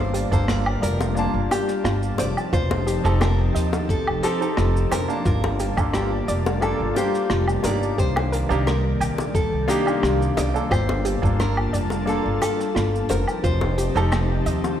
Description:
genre	sunset chillout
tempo	88 BPM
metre	4/4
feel	straight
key	unclear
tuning	A4 = 439 Hz
part	nylon-string guitar	melody	0.0-14.8 s	G4 to D5	-28 LUFS	left 2 dB	ping-pong delay
part	warm baby grand piano	accompaniment	0.0-14.1 s	Bb3 to A5	-27 LUFS	right 1 dB	auto-pan, tape echo
part	airy breathy pad	sustained chords	0.0-14.8 s	C3 to A5	-28 LUFS	left 1 dB	chorus
part	soft round pluck	arpeggios	0.0-14.7 s	F4 to G5	-31 LUFS	right 1 dB	chorus, tape echo
part	upright bass	bass	0.0-14.8 s	F1 to Eb2	-24 LUFS	equal	none
part	vintage brush drum kit	drums	0.1-14.8 s	cabasa, hi-hat, rim click, woodblock	-29 LUFS	right 1 dB	none
part	electronic kick drum	drums	0.3-13.6 s	none	-24 LUFS	equal	none
part	bongos	percussion	0.5-14.8 s	none	-30 LUFS	left 5 dB	none
room	moderate concert hall reverb, RT60 1.9 s, small room ambience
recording	played on a big sound system in a bare room, stone room reverb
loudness	-19 LUFS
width	side -10 dB against mid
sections	0.0-14.8 A section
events	none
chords	0.0 Gm9; 2.2 F9; 8.0 Cm7; 10.7 Gm9; 13.1 F9

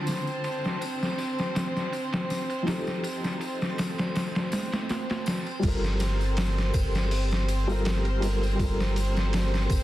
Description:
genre	trip hop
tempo	81 BPM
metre	4/4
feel	swing 54% on 16ths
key	G minor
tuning	A4 = 440 Hz
part	felt-muted upright piano	accompaniment	0.0-9.8 s	D3 to Bb4	-33 LUFS	left 1 dB	tremolo, vintage 12-bit sampler grit, tape echo
part	rich chamber violin section	sustained chords	0.0-9.8 s	C4 to C5	-33 LUFS	right 1 dB	none
part	backwards swelling texture	texture	0.0-5.6 s	A5	-46 LUFS	equal	none
part	trip hop sampler-style drum kit	drums	0.1-9.8 s	crash cymbal, hi-hat, kick drum, ride cymbal, snare drum	-29 LUFS	equal	low-pass filter on cymbals, vintage 12-bit sampler grit, low-pass filter on snare, low-pass filter on hats, low-pass filter on kick, low-pass filter on room
part	tambourine and triangle	percussion	0.1-9.8 s	none	-44 LUFS	left 4 dB	none
part	soft dub sub bass	bass	5.6-9.8 s	G1	-26 LUFS	equal	tube saturation
room	digital ambience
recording	dense, heavily limited modern master, vinyl crackle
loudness	-25 LUFS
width	side -15 dB against mid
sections	0.0-5.6 A section; 5.6-9.8 B section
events	none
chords	0.0 Dm7; 2.7 F9; 5.6 Gm9

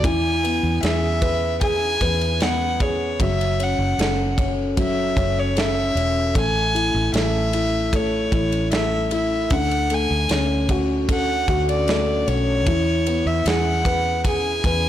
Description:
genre	pop ballad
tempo	76 BPM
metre	4/4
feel	straight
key	unclear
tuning	A4 = 440 Hz
part	warm violin	melody	0.0-14.9 s	C#5 to G#5	-24 LUFS	equal	none
part	dark upright piano	accompaniment	0.0-14.9 s	D3 to B4	-23 LUFS	left 2 dB	none
part	vintage muted fingered electric bass	bass	0.0-14.9 s	E1 to E2	-24 LUFS	right 1 dB	none
part	modern studio drum kit	drums	0.0-14.8 s	kick drum, ride cymbal, snare drum	-25 LUFS	equal	none
room	light reverb, small room reverb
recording	blown-out, overdriven recording, overdrive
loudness	-18 LUFS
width	side -11 dB against mid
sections	0.0-14.9 A section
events	none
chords	0.0 E; 3.2 F#m7; 6.4 Amaj7; 9.5 Dmaj7; 12.7 E

